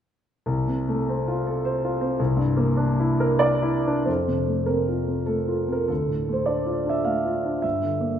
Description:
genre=classical, romantic character piece for solo piano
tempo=84-109 BPM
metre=3/4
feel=rubato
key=F major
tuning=A4 = 440 Hz
part: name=clear concert grand piano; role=solo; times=0.5-8.2 s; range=C2 to F5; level=-21 LUFS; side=equal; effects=none
room=moderate concert hall reverb, RT60 1.8 s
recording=minimal, uncompressed stereo recording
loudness=-21 LUFS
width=side -9 dB against mid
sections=0.5-4.1 A section; 4.1-8.2 B section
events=none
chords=0.5 F/C; 2.2 C9; 4.1 F; 5.9 Dm; 7.6 Gm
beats=| 0.47 1.08 1.64 | 2.19 2.78 3.40 | 4.08 4.70 5.29 | 5.89 6.49 7.07 | 7.64

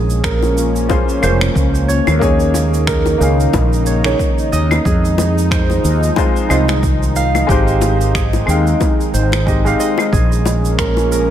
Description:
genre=sunset chillout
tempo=91 BPM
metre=4/4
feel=swing 56% on 16ths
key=Bb dorian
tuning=A4 = 440 Hz
part: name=lush unison pad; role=sustained chords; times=0.0-11.3 s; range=Db3 to Eb4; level=-20 LUFS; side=left 1 dB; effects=chorus
part: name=concert harp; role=arpeggios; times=0.0-11.3 s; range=G4 to F5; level=-21 LUFS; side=right 5 dB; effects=digital delay
part: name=mellow fretless electric bass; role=bass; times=0.0-11.3 s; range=F1 to F2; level=-16 LUFS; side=equal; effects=none
part: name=cabasa, finger snaps and claves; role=drums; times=0.1-11.3 s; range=none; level=-24 LUFS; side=right 1 dB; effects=none
part: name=electronic kick drum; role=drums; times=0.2-10.9 s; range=none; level=-18 LUFS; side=equal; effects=overdrive
part: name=bongos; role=percussion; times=0.4-11.1 s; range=none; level=-22 LUFS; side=left 6 dB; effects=none
part: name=warm baby grand piano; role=accompaniment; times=0.9-10.1 s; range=Ab3 to G5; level=-20 LUFS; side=moving between left 7 dB and right 2 dB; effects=auto-pan, digital delay
room=light reverb, small room ambience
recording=none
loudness=-12 LUFS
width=side -10 dB against mid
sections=0.0-11.3 A section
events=filter sweep on grand piano 0.0-11.3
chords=0.0 Bbm9; 2.2 Eb7sus4; 4.9 Fm7; 7.5 Abmaj7; 10.1 Bbm9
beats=0.24 0.90 1.56 | 2.21 2.88 3.53 4.19 | 4.85 5.51 6.17 6.83 | 7.49 8.15 8.81 9.47 | 10.13 10.79

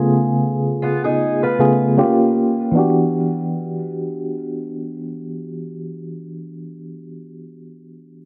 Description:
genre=R&B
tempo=78 BPM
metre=4/4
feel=swing 58% on 16ths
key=unclear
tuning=A4 = 440 Hz
part: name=FM electric piano with tremolo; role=accompaniment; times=0.0-8.3 s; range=C#3 to G#4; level=-21 LUFS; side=equal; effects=low-pass filter
part: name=picked steel-string acoustic guitar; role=arpeggios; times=0.8-2.0 s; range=B3 to B4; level=-25 LUFS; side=equal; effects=low-pass filter, tape echo
room=light reverb, studio reverb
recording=none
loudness=-19 LUFS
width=mono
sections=0.0-2.7 A section; 2.7-5.8 B section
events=filter sweep 0.0-2.7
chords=0.0 C#7b13; 2.0 Gm7b5; 2.7 Em9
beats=0.44 1.21 1.98 | 2.75 3.52 4.28 5.05

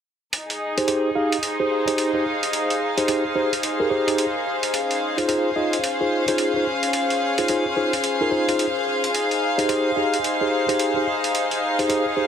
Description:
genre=glitch hop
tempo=109 BPM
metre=4/4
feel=swing 62% on 16ths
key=F minor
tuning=A4 = 440 Hz
part: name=electronic hi-hat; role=drums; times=0.3-12.0 s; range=none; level=-26 LUFS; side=right 1 dB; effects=none
part: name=warm studio string section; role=texture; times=0.3-12.3 s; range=Db4 to F5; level=-23 LUFS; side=left 1 dB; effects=none
part: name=mellow tine electric piano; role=stabs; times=0.8-12.3 s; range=Eb4 to F5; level=-23 LUFS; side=right 1 dB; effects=medium stereo tremolo, low-pass filter, tape echo
room=moderate plate reverb, RT60 1.9 s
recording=heavily compressed radio sound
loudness=-19 LUFS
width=side -8 dB against mid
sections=0.3-12.3 A section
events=none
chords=0.3 Fm7; 4.7 Dbmaj7; 9.1 Fm7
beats=| 0.33 0.88 1.43 1.98 | 2.53 3.08 3.63 4.18 | 4.73 5.29 5.83 6.39 | 6.94 7.49 8.04 8.59 | 9.14 9.69 10.24 10.79 | 11.34 11.89

